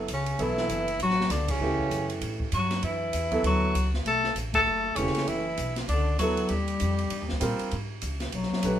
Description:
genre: modal jazz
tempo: 196 BPM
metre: 4/4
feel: swing 60% on 8ths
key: B minor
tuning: A4 = 440 Hz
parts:
  - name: clear baby grand piano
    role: accompaniment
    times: 0.0-8.8 s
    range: E3 to B4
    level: -29 LUFS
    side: right 2 dB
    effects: none
  - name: upright bass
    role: bass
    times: 0.0-8.8 s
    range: E1 to A#2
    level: -31 LUFS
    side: equal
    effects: none
  - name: warm tenor saxophone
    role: melody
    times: 0.1-7.4 s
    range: C#4 to A4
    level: -28 LUFS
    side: equal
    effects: none
  - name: mellow bass clarinet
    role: second line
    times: 0.1-8.8 s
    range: C#3 to A3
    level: -31 LUFS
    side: left 3 dB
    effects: none
  - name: open jazz drum kit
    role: drums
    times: 0.1-8.7 s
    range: hi-hat, kick drum, ride cymbal, snare drum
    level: -35 LUFS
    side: right 1 dB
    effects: none
room: moderate studio reverb, RT60 0.5 s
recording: band playing live in one room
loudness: -25 LUFS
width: side -10 dB against mid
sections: 0.0-7.7 A section; 7.7-8.8 B section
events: band accent 1.5, 4.5; bass clarinet solo 7.7-8.8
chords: 0.0 Bm9; 6.5 D#; 7.7 G#m11

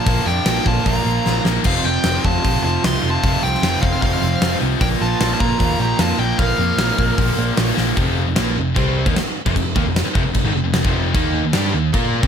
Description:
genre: hard rock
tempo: 152 BPM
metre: 4/4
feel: straight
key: unclear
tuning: A4 = 440 Hz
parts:
  - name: dark smooth lead guitar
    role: melody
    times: 0.0-7.6 s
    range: F5 to C6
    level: -23 LUFS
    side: equal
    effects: overdrive, digital delay
  - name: octave-fuzz lead guitar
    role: second line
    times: 0.0-7.6 s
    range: Bb3 to G4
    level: -27 LUFS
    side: right 4 dB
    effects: distortion
  - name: crunchy overdriven guitar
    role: riff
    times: 0.0-12.3 s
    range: F2 to Bb4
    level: -26 LUFS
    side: equal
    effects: none
  - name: scooped high-gain guitar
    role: riff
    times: 0.0-12.3 s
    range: F2 to Bb4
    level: -25 LUFS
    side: left 14 dB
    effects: distortion
  - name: sludgy distorted guitar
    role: riff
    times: 0.0-12.3 s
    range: F2 to Bb4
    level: -25 LUFS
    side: right 13 dB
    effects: overdrive
  - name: picked electric bass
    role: bass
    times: 0.1-12.3 s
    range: F1 to C3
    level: -21 LUFS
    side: equal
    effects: none
  - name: gated 80s drum kit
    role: drums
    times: 0.1-12.3 s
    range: crash cymbal, hi-hat, kick drum, snare drum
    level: -20 LUFS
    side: equal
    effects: none
room: small room ambience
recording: none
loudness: -15 LUFS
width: side -8 dB against mid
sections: 0.0-8.0 A section; 8.0-12.3 B section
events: drum fill 1.3-1.7, 7.8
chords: 0.0 Bb; 1.7 F; 4.8 Bb5; 8.0 F5; 11.1 Eb5

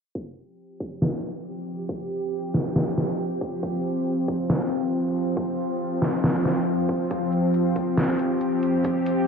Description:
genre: deep dubstep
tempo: 138 BPM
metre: 4/4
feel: swing 61% on 16ths, half-time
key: unclear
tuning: A4 = 440 Hz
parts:
  - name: bowed-like drone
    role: sustained chords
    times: 0.9-9.3 s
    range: F3 to G4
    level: -24 LUFS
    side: equal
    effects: built-in reverb
  - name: electronic kick drum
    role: drums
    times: 0.2-9.0 s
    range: none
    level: -34 LUFS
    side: equal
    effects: high-pass filter on kick, high-pass filter on room
  - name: dubstep drum kit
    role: drums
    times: 1.0-9.2 s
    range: hi-hat, snare drum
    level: -26 LUFS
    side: equal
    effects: none
room: moderate huge ambient reverb, RT60 8.1 s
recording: dark, warm production, low-pass filter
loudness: -22 LUFS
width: side -6 dB against mid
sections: 0.2-9.3 A section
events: filter sweep 0.2-9.3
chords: 0.2 F5

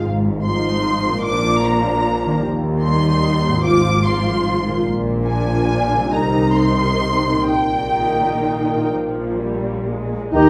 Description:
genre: classical, slow romantic movement for symphony orchestra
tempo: 41-52 BPM (dotted quarters)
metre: 6/8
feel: rubato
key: unclear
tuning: A4 = 440 Hz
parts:
  - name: warm studio violin section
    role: melody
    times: 0.0-8.9 s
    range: G5 to D6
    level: -26 LUFS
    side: equal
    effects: none
  - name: warm studio violin section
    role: second line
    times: 0.0-10.5 s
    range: Eb5 to D6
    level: -28 LUFS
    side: equal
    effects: none
  - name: warm studio viola section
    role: accompaniment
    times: 0.0-10.5 s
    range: Eb3 to F4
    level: -24 LUFS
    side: equal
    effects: none
  - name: concert harp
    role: arpeggios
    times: 0.0-10.5 s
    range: Ab2 to Eb5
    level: -26 LUFS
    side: equal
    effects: none
  - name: warm chamber cello section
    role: bass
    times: 0.0-10.2 s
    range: Eb2 to C3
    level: -26 LUFS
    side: equal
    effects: none
  - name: dark studio double bass section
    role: bass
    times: 0.1-10.5 s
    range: Ab1 to Eb2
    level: -27 LUFS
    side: equal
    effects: none
  - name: clear clarinet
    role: second line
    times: 10.3-10.5 s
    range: G4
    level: -19 LUFS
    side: equal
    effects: none
  - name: clear oboe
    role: second line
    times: 10.3-10.5 s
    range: G5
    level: -24 LUFS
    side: equal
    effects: none
  - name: silver concert flute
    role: second line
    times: 10.3-10.5 s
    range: Bb5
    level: -23 LUFS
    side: equal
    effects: none
  - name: mellow bassoon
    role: accompaniment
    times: 10.3-10.5 s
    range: Eb3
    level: -21 LUFS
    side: equal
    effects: none
  - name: mellow French horn section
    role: sustained chords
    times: 10.3-10.5 s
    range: Eb4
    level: -15 LUFS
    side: equal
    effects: none
room: wet recital hall reverb, RT60 1.4 s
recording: none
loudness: -18 LUFS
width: mono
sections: 0.0-10.3 A section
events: none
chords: 0.1 Fm7/Ab; 1.3 Bb; 2.4 Eb; 3.6 Fm/Ab; 4.9 Bb; 6.1 Cm; 7.5 Eb/Bb; 8.9 Bb

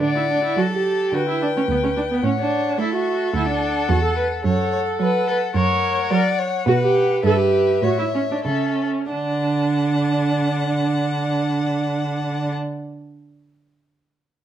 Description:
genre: quick classical-period movement for string quartet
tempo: 90-109 BPM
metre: 2/4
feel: straight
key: D major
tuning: A4 = 438 Hz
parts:
  - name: rich violin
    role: melody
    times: 0.0-12.5 s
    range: E5 to A5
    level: -28 LUFS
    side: left 12 dB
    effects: none
  - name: rich violin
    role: second line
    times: 0.0-12.5 s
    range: A4 to F#5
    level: -25 LUFS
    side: left 2 dB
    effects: none
  - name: rich viola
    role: accompaniment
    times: 0.0-12.5 s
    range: B3 to C#5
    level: -22 LUFS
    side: right 2 dB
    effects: none
  - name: rich cello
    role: bass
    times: 0.0-12.5 s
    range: D2 to A3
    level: -23 LUFS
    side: right 3 dB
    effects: none
room: light reverb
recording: dark, warm production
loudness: -18 LUFS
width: side -10 dB against mid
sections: 0.0-9.1 A section; 9.1-11.8 B section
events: slowing down 6.1-9.1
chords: 0.0 D; 1.1 Em9/D (rootless); 2.2 A6; 3.3 D; 4.4 F#m; 5.6 F#; 6.7 B5; 7.2 Em/G; 7.8 A; 9.1 D

